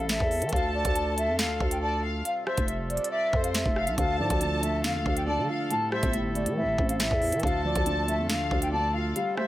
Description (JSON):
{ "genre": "hip hop, drill", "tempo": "139 BPM", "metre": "4/4", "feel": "half-time", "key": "D minor", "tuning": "A4 = 440 Hz", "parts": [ { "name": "breathy concert flute", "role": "melody", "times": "0.0-9.5 s", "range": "C5 to A5", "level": "-30 LUFS", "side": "equal", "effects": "low-pass filter" }, { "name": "warm brass ensemble", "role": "sustained chords", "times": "0.0-9.5 s", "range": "C3 to A4", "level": "-36 LUFS", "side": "equal", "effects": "none" }, { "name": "growling 808-style bass", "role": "bass", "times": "0.0-9.1 s", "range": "F1 to E3", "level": "-31 LUFS", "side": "equal", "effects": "none" }, { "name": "drill drum kit", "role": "drums", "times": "0.1-9.5 s", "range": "hi-hat, kick drum, rim click, snare drum", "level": "-29 LUFS", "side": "equal", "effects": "none" }, { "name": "dark studio violin section", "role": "second line", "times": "0.5-9.5 s", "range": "C5 to A5", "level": "-34 LUFS", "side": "left 2 dB", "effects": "tape echo" }, { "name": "dark concert grand piano", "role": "accompaniment", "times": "4.0-9.5 s", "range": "A2 to F4", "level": "-31 LUFS", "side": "equal", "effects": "low-pass filter" } ], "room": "light reverb", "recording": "none", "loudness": "-24 LUFS", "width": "side -15 dB against mid", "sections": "0.0-9.5 A section", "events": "none", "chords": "0.0 Am7; 0.5 Dm; 2.3 Fadd9; 4.0 Dm; 5.7 Am7; 7.4 Dm" }